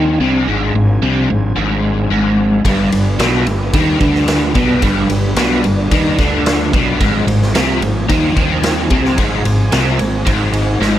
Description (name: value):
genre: psychedelic rock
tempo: 110 BPM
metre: 4/4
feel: straight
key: unclear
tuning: A4 = 440 Hz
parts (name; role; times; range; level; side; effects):
- ensemble organ-string; sustained chords; 0.0-11.0 s; F3 to Ab5; -24 LUFS; right 4 dB; ensemble chorus
- biting overdriven guitar; riff; 0.0-11.0 s; G2 to Eb3; -14 LUFS; equal; rotary speaker
- fuzz fingered electric bass; bass; 0.0-11.0 s; G1 to Eb2; -20 LUFS; equal; overdrive
- deep rumbling drone; drone; 0.0-11.0 s; G3 to D4; -27 LUFS; left 3 dB; none
- raw garage drum kit; drums; 2.6-10.9 s; kick drum, ride cymbal, snare drum; -18 LUFS; equal; none
room: light reverb, small room ambience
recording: none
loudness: -12 LUFS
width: side -12 dB against mid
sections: 0.0-11.0 A section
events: drum fill 10.8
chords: 0.0 Ab6; 2.6 G; 7.0 Ab6